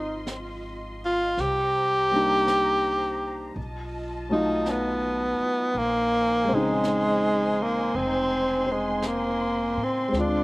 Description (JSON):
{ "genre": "jazz ballad", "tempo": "55 BPM", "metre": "4/4", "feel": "swing 68% on 8ths", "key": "Bb minor", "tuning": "A4 = 439 Hz", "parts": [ { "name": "warm tenor saxophone", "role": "melody", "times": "0.0-10.4 s", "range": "Ab3 to G4", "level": "-23 LUFS", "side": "equal", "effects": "slapback echo" }, { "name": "warm grand piano", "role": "accompaniment", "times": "0.0-10.4 s", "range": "Db3 to C5", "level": "-29 LUFS", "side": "left 1 dB", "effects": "none" }, { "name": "muted studio string section", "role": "sustained chords", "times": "0.0-10.4 s", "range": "Eb4 to C6", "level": "-35 LUFS", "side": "right 1 dB", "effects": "none" }, { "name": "upright bass", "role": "bass", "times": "0.0-10.4 s", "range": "F1 to A2", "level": "-37 LUFS", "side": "equal", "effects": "none" }, { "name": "jazz brush drum kit", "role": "drums", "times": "0.3-10.4 s", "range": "brushed snare drum, hi-hat, snare drum", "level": "-39 LUFS", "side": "right 1 dB", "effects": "slapback echo" } ], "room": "little or no reverb", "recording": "recorded outdoors, with no room sound", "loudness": "-22 LUFS", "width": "side -22 dB against mid", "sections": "0.0-10.4 A section", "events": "none", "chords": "0.0 Dbmaj7 (rootless); 1.4 Cm7; 3.6 B7#11; 5.7 Bbm11" }